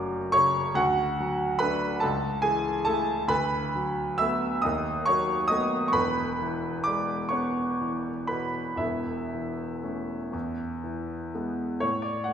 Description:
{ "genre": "classical, romantic nocturne for solo piano", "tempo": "38-48 BPM (dotted quarters)", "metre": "6/8", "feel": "rubato", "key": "A major", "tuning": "A4 = 440 Hz", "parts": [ { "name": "warm grand piano", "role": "solo", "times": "0.0-12.3 s", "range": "E1 to E6", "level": "-25 LUFS", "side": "equal", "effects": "none" } ], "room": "wet recital hall reverb, RT60 1.8 s", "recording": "recorded in a church or concert hall", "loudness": "-25 LUFS", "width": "side -8 dB against mid", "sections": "0.0-11.8 A section", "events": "none", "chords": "0.0 F#m; 0.8 D; 2.0 A/C#; 3.3 Bm7/D; 4.6 B7/D#; 6.0 E; 8.8 A/E; 10.3 E; 11.8 A" }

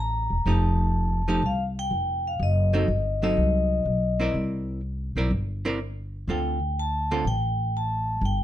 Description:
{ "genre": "jazz, small-group swing and bop", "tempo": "124 BPM", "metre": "4/4", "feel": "swing 69% on 8ths", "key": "unclear", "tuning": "A4 = 440 Hz", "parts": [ { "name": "vibraphone with medium hard mallets", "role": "melody", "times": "0.0-8.4 s", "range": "D#5 to Bb5", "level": "-28 LUFS", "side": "left 2 dB", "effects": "plate reverb" }, { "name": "upright bass", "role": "bass", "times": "0.0-8.4 s", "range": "E1 to D2", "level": "-26 LUFS", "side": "equal", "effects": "none" }, { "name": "archtop guitar, miked and amplified", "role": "accompaniment", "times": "0.5-7.2 s", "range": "D3 to D5", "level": "-28 LUFS", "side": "right 2 dB", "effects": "none" } ], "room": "light reverb", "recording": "dark, warm production", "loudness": "-23 LUFS", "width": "side -12 dB against mid", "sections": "0.0-8.4 A section", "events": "none", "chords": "0.0 F9; 2.4 F#dim7; 4.3 C9; 6.3 Dm7" }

